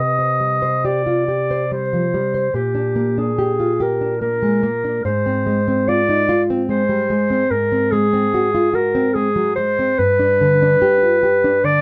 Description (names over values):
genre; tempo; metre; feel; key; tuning
romantic duo for clarinet and classical guitar; 72 BPM; 3/4; rubato; C minor; A4 = 441 Hz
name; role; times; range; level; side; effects
warm clarinet; melody; 0.0-11.8 s; G4 to Eb5; -20 LUFS; equal; none
nylon-string guitar; accompaniment; 0.0-11.8 s; G2 to C5; -21 LUFS; equal; none
room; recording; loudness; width
light reverb; close, detailed microphones; -18 LUFS; mono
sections
0.0-11.8 A section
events
none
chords
0.0 Cm; 2.5 Gm/Bb; 5.0 Fm/Ab; 7.5 Ab7; 10.0 G